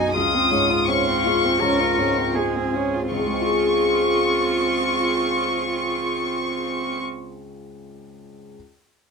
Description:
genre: neoclassical piano and strings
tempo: 77-83 BPM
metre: 4/4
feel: rubato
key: Db major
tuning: A4 = 440 Hz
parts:
  - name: warm chamber violin section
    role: melody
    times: 0.0-7.0 s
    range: Ab5 to Eb6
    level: -23 LUFS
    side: left 3 dB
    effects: none
  - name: warm cello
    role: second line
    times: 0.0-7.0 s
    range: C4 to Bb4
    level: -26 LUFS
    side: right 3 dB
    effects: none
  - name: rich viola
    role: accompaniment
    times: 0.0-7.0 s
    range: Ab3 to F4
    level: -26 LUFS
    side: right 3 dB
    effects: none
  - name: warm grand piano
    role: accompaniment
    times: 0.0-8.6 s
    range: Cb2 to Ab4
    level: -26 LUFS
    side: left 3 dB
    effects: none
  - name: dark chamber string section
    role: sustained chords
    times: 0.0-7.0 s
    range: Gb3 to Ab4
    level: -30 LUFS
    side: right 1 dB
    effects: none
room: moderate booth ambience, RT60 0.2 s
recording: minimal, uncompressed stereo recording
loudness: -18 LUFS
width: side -5 dB against mid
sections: 0.0-3.1 A section; 3.1-6.2 B section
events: slowing down 0.0-3.1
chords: 0.1 Dbmaj7

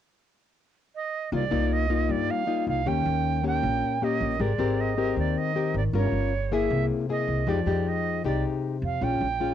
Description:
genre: bossa nova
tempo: 156 BPM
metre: 4/4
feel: straight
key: C minor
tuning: A4 = 441 Hz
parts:
  - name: bright reedy jazz flute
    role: melody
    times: 1.0-9.5 s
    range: Db5 to G5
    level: -29 LUFS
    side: right 8 dB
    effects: cassette tape
  - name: nylon-string guitar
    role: accompaniment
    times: 1.3-9.5 s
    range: Bb2 to Bb4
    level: -26 LUFS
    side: left 6 dB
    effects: none
  - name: upright bass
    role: bass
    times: 1.3-9.5 s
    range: G1 to G2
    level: -29 LUFS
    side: right 2 dB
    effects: none
room: moderate small room reverb, RT60 0.5 s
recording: home recording on cassette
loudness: -24 LUFS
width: side -10 dB against mid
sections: 0.0-1.3 A section; 1.3-9.5 B section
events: none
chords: 0.0 N.C.; 1.3 Cm11; 2.9 Eb7; 4.4 Abmaj9; 5.9 Gm7b5; 6.7 C7alt; 7.5 Fm9; 9.0 Bbm7

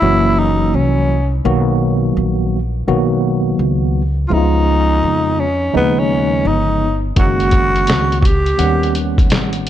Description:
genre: hip hop, jazz-hop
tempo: 84 BPM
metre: 4/4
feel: swing 65% on 16ths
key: F# major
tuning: A4 = 441 Hz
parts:
  - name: growling tenor saxophone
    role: melody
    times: 0.0-9.0 s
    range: B3 to G4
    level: -17 LUFS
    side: equal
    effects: none
  - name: tine electric piano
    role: accompaniment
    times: 0.0-9.7 s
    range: C#3 to F#5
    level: -18 LUFS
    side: equal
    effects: medium stereo tremolo
  - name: upright bass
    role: bass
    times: 0.0-9.7 s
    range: F#1 to E#2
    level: -18 LUFS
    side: equal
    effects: none
  - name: trip hop sampler-style drum kit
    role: drums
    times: 7.2-9.7 s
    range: hi-hat, kick drum, snare drum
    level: -15 LUFS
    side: equal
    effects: vintage 12-bit sampler grit
room: light reverb, digital ambience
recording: dark, warm production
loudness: -13 LUFS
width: side -11 dB against mid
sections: 0.0-9.7 A section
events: none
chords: 0.0 F#7; 1.4 Bmaj7; 4.3 C#7; 7.2 F#69; 8.6 D#7alt

